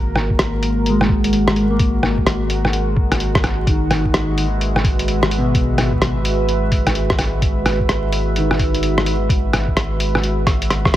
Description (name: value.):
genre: future garage.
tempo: 128 BPM.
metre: 4/4.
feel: swing 64% on 16ths.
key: unclear.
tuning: A4 = 441 Hz.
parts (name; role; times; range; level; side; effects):
deep dark ambient pad; sustained chords; 0.0-11.0 s; G#3 to E5; -22 LUFS; right 1 dB; chorus, built-in reverb, sidechain pumping.
warm sub bass; bass; 0.0-11.0 s; G#1; -21 LUFS; equal; sidechain pumping.
lo-fi sampler-style drum kit; drums; 0.2-11.0 s; hi-hat, rim click; -20 LUFS; equal; small room reverb.
electronic kick drum; drums; 0.3-10.9 s; none; -20 LUFS; equal; small room reverb.
mellow electric guitar; accompaniment; 0.9-9.1 s; B2 to A#3; -21 LUFS; left 1 dB; sidechain pumping, tape echo.
room: light reverb.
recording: vinyl crackle.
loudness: -15 LUFS.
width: side -13 dB against mid.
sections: 0.0-11.0 A section.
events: drum fill 10.5-11.0.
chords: 0.0 G#sus2; 3.7 Eadd9/G#.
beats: 0.39 0.86 1.32 | 1.79 2.26 2.73 3.20 | 3.67 4.14 4.61 5.08 | 5.54 6.01 6.48 6.95 | 7.42 7.89 8.36 8.82 | 9.29 9.76 10.23 10.70.